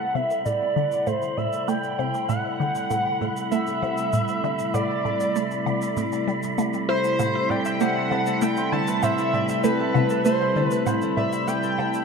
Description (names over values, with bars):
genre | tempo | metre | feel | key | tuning
ambient, sequencer-driven space music | 98 BPM | 4/4 | straight | A dorian | A4 = 442 Hz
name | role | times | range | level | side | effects
pulse-width lead | melody | 0.0-12.0 s | B4 to A5 | -25 LUFS | equal | chorus, ping-pong delay
sweeping resonant pad | sustained chords | 0.0-12.0 s | C3 to B5 | -27 LUFS | equal | chorus
wind-like tuned noise texture | texture | 0.0-12.0 s | B5 | -33 LUFS | right 4 dB | built-in reverb
resonant blip pluck | riff | 0.1-12.0 s | A2 to E4 | -27 LUFS | right 1 dB | phaser, ping-pong delay
woodblock and shaker | percussion | 0.2-12.0 s | none | -37 LUFS | right 5 dB | ping-pong delay
concert harp | arpeggios | 7.2-12.0 s | E4 to A5 | -30 LUFS | moving between left 4 dB and right 5 dB | auto-pan, ping-pong delay
room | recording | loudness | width
wet plate reverb, RT60 3.1 s | echo-heavy mix | -21 LUFS | side -5 dB against mid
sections
0.0-12.0 A section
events
fade-in on analog synth pad 0.0-12.0; fade-in on drum 0.0-12.0; fade-out 10.5-12.0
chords
0.0 Am7